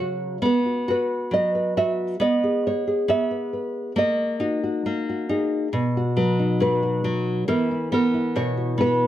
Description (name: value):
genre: folk, solo fingerstyle acoustic guitar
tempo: 68 BPM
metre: 4/4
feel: straight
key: B major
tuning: A4 = 435 Hz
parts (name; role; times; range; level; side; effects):
- nylon-string guitar; solo; 0.0-9.1 s; B2 to E5; -20 LUFS; equal; none
room: moderate studio reverb, RT60 0.8 s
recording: none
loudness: -20 LUFS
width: side -12 dB against mid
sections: 0.0-9.1 A section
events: none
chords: 0.4 B5; 2.2 G#m/B; 4.0 D#m/A#; 5.7 B; 7.5 Esus2